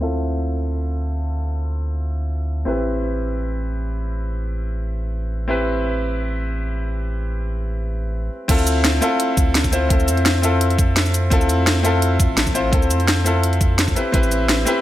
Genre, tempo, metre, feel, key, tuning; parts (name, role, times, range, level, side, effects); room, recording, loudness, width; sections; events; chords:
liquid drum and bass; 170 BPM; 4/4; swing 53% on 16ths; D dorian; A4 = 445 Hz
bright grand piano; accompaniment; 0.0-14.8 s; C4 to C5; -22 LUFS; left 1 dB; dub echo
saturated sub bass; bass; 0.0-14.7 s; A1 to F2; -21 LUFS; equal
drum and bass drum kit; drums; 8.5-14.7 s; crash cymbal, hi-hat, shaker, snare drum; -21 LUFS; equal; overdrive, low-pass filter on hats, low-pass filter on perc, low-pass filter on snare, low-pass filter on cymbals, low-pass filter on room
electronic kick drum; drums; 8.5-14.2 s; -19 LUFS; equal; overdrive
little or no reverb; low-pass filter; -17 LUFS; side -14 dB against mid
0.0-8.5 A section; 8.5-14.8 B section
filter sweep 0.0-8.5; drop 8.5-14.8
0.0 Dm9; 2.7 Am9; 8.5 Dm9; 14.0 Am9